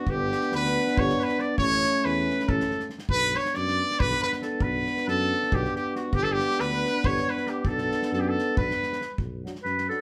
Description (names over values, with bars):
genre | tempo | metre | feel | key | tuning
balkan folk, Balkan brass band | 277 BPM (eighths) | 7/8 | straight | B minor | A4 = 440 Hz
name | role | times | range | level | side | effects
clear trumpet | melody | 0.0-9.1 s | F#4 to D5 | -29 LUFS | equal | none
clear clarinet | second line | 0.0-10.0 s | F#4 to D5 | -37 LUFS | equal | none
warm euphonium | accompaniment | 0.0-10.0 s | C#4 to D4 | -35 LUFS | equal | none
warm euphonium | accompaniment | 0.0-10.0 s | F#3 to B3 | -35 LUFS | equal | none
dark tuba | bass | 0.1-9.9 s | G1 to F#2 | -34 LUFS | equal | none
unplugged drum kit | percussion | 0.1-10.0 s | kick drum, snare drum | -34 LUFS | equal | none
room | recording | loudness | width
wet studio reverb, RT60 0.7 s | band playing live in one room | -26 LUFS | mono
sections
0.0-9.2 A section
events
none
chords
0.1 G; 1.6 A; 3.1 Bm; 6.1 G; 7.7 Bm